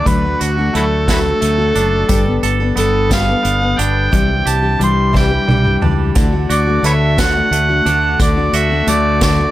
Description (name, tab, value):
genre	folk rock and heartland rock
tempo	59 BPM (dotted quarters)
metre	6/8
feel	straight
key	D mixolydian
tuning	A4 = 440 Hz
part	overdriven harmonica	melody	0.0-9.5 s	E4 to C6	-17 LUFS	right 1 dB	slapback echo
part	picked steel-string acoustic guitar	accompaniment	0.0-9.5 s	C3 to A4	-20 LUFS	left 5 dB	none
part	twangy electric guitar	riff	0.0-9.5 s	C3 to A4	-22 LUFS	right 7 dB	spring reverb
part	fingered electric bass	bass	0.1-9.4 s	F#1 to D2	-18 LUFS	equal	none
part	unplugged drum kit	drums	0.1-9.4 s	hi-hat, kick drum, snare drum, toms	-18 LUFS	equal	none
part	mellow tonewheel organ	sustained chords	6.2-9.5 s	A3 to A4	-26 LUFS	equal	slow rotary speaker, chorus vibrato
room	small room ambience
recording	none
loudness	-12 LUFS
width	side -14 dB against mid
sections	0.0-9.5 A section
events	harmonica solo 0.0-9.5; drum fill 5.1-6.2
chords	0.0 D; 2.1 Gadd9; 4.1 Cadd9; 6.2 D